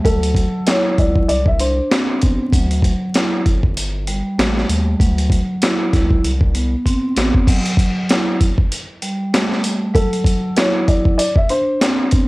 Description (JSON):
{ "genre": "hip hop, boom-bap hip-hop", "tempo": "97 BPM", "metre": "4/4", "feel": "swing 58% on 16ths", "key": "D major", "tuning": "A4 = 441 Hz", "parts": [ { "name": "vibraphone with soft mallets", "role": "accompaniment", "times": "0.0-12.3 s", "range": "F#3 to E4", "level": "-20 LUFS", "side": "right 1 dB", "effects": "cassette tape, high-pass filter, low-pass filter" }, { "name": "round analog bass", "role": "bass", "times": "0.0-7.3 s", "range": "G1 to Eb2", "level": "-20 LUFS", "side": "equal", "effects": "tube saturation" }, { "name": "boom bap sampler-style drum kit", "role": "drums", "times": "0.0-12.3 s", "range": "crash cymbal, hi-hat, kick drum, snare drum", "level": "-16 LUFS", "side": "equal", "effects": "cassette tape" }, { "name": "dark upright piano", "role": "melody", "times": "0.1-1.9, 9.9-11.8 s", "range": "A4 to E5", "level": "-20 LUFS", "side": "left 1 dB", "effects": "high-pass filter, low-pass filter, cassette tape" } ], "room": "light reverb", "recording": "home recording on cassette, vinyl crackle", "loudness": "-14 LUFS", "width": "side -22 dB against mid", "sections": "0.0-7.5 A section; 7.5-12.3 B section", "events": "drum fill 6.9-7.5", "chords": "0.1 Dmaj9; 1.3 Csus2; 2.5 Dadd9; 3.5 Gsus2; 5.0 Dmaj9; 6.2 Amadd9 (rootless); 7.5 Esus2/F#; 8.4 Gsus2; 9.9 F#m7; 11.2 Csus2" }